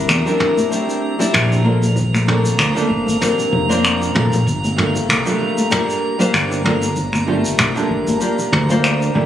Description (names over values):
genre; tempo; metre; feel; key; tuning
sunset chillout; 96 BPM; 4/4; swing 56% on 16ths; G dorian; A4 = 440 Hz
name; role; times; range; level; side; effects
nylon-string guitar; accompaniment; 0.0-9.3 s; G3 to D5; -18 LUFS; equal; auto-pan, tape echo
fretless electric bass; bass; 0.0-9.3 s; F1 to E2; -18 LUFS; equal; none
drifting glass-harmonics texture; texture; 0.0-9.3 s; Bb5; -26 LUFS; right 3 dB; chorus, built-in reverb
vintage brush drum kit; drums; 0.1-9.1 s; finger snaps, shaker, toms; -20 LUFS; equal; none
congas and bongos; percussion; 0.1-9.3 s; none; -25 LUFS; left 2 dB; none
electronic kick drum; drums; 2.0-8.2 s; none; -28 LUFS; equal; none
room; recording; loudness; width
light reverb, small room ambience; recorded on a phone in the room, club reverb; -14 LUFS; side -11 dB against mid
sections
0.0-9.3 A section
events
none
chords
0.0 C9; 1.7 Bbmaj9; 4.5 Gm9